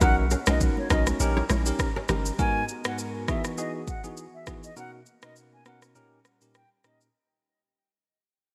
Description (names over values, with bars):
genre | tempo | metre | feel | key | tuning
afrobeats | 101 BPM | 4/4 | swing 55% on 16ths | unclear | A4 = 440 Hz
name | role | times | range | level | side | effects
concert flute | melody | 0.0-7.0 s | C#5 to G#5 | -34 LUFS | equal | digital delay
bell-like tine electric piano | accompaniment | 0.0-7.1 s | G#2 to A#4 | -34 LUFS | equal | lush chorus
hollow soft pad | sustained chords | 0.0-7.1 s | A#2 to A#4 | -43 LUFS | equal | none
kora | riff | 0.0-2.2 s | A#3 to C#5 | -36 LUFS | equal | none
punchy sub bass | bass | 0.0-2.3 s | G1 to B1 | -28 LUFS | equal | none
afro-pop drum kit | drums | 0.0-7.1 s | kick drum, rim click, shaker | -30 LUFS | equal | none
congas | percussion | 0.0-2.2 s | none | -36 LUFS | equal | none
room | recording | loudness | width
light reverb, small room reverb | bright 1980s-style digital production | -26 LUFS | mono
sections
0.0-7.1 A section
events
fade-out 0.0-7.1; break 4.8-7.1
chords
0.0 Bmaj9; 1.2 D#7/A#; 2.4 G#m9; 3.3 Emaj7; 4.8 Bmaj9; 6.0 D#7/A#